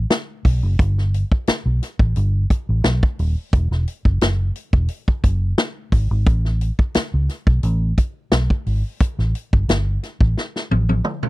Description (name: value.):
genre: funk.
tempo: 88 BPM.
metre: 4/4.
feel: straight.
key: unclear.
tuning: A4 = 439 Hz.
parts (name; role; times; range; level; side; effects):
vintage muted fingered electric bass; bass; 0.0-11.0 s; D#1 to C#2; -18 LUFS; equal; none.
swinging big-band drum kit; drums; 0.1-11.3 s; hi-hat, kick drum, snare drum, toms; -17 LUFS; equal; none.
room: little or no reverb.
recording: dry, close 1970s-style studio recording.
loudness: -17 LUFS.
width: side -18 dB against mid.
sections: 0.0-11.3 A section.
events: drum fill 10.4-11.3.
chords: none.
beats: 0.10 | 0.79 1.47 2.16 2.84 | 3.53 4.21 4.90 5.58 | 6.26 6.95 7.63 8.32 | 9.00 9.69 10.37 11.06.